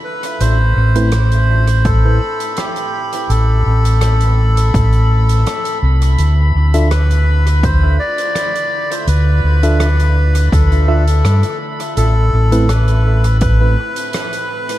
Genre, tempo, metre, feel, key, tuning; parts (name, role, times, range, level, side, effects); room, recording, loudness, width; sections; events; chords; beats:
ambient dub; 83 BPM; 4/4; swing 53% on 16ths; D dorian; A4 = 440 Hz
melodica; melody; 0.0-14.8 s; G4 to D5; -20 LUFS; left 1 dB; dub echo
soft additive organ-like pad; sustained chords; 0.0-14.8 s; A2 to D5; -32 LUFS; left 1 dB; ensemble chorus, built-in reverb, vintage 12-bit sampler grit
drifting glass-harmonics texture; texture; 0.0-14.8 s; B5; -27 LUFS; left 1 dB; chorus, built-in reverb
soft-mallet drum kit; drums; 0.2-14.8 s; hi-hat, rim click; -28 LUFS; right 2 dB; dub echo
fingered electric bass; bass; 0.4-13.7 s; A1 to G2; -11 LUFS; equal
tine electric piano; stabs; 1.0-1.1, 6.7-12.7 s; A3 to E5; -24 LUFS; right 1 dB; medium stereo tremolo, dub echo
electronic kick drum; drums; 1.9-13.6 s; -16 LUFS; equal; overdrive
studio reverb; dark, warm production; -11 LUFS; side -15 dB against mid
0.0-14.8 A section
fade-in on ambient pad 0.0-14.8
0.4 Amadd9; 6.2 Dmadd9; 12.0 Amadd9
| 0.40 1.13 1.85 2.57 | 3.30 4.02 4.74 5.46 | 6.19 6.91 7.63 8.36 | 9.08 9.80 10.53 11.25 | 11.97 12.69 13.42 14.14